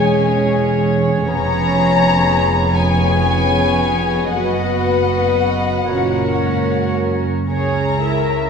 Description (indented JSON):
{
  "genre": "classical, slow romantic movement for string orchestra",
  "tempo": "37-43 BPM (dotted quarters)",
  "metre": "6/8",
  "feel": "rubato",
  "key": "unclear",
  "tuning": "A4 = 437 Hz",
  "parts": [
    { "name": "dark studio violin section", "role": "melody", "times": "0.0-8.5 s", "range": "F#5 to A#5", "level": "-22 LUFS", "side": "left 4 dB", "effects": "none" },
    { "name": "warm studio violin section", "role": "second line", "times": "0.0-8.5 s", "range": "G#4 to E5", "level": "-20 LUFS", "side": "left 3 dB", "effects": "none" },
    { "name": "warm studio viola section", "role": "accompaniment", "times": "0.0-8.5 s", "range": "G#3 to A#4", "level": "-20 LUFS", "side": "equal", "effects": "none" },
    { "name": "rich studio double bass section", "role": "bass", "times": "0.0-8.5 s", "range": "E1 to C#2", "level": "-22 LUFS", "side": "right 3 dB", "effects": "none" },
    { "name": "warm chamber cello section", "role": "bass", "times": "0.0-8.5 s", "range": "E2 to C#3", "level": "-21 LUFS", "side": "right 3 dB", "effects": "none" }
  ],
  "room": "wet scoring stage reverb, RT60 1.6 s",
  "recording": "heard from further back in the room",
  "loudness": "-14 LUFS",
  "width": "side -6 dB against mid",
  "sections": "0.0-8.5 A section",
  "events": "none",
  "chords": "0.0 C#m/E; 1.3 C#7/E#; 4.3 B/F#; 5.9 F#; 7.5 A#m7b5/C#"
}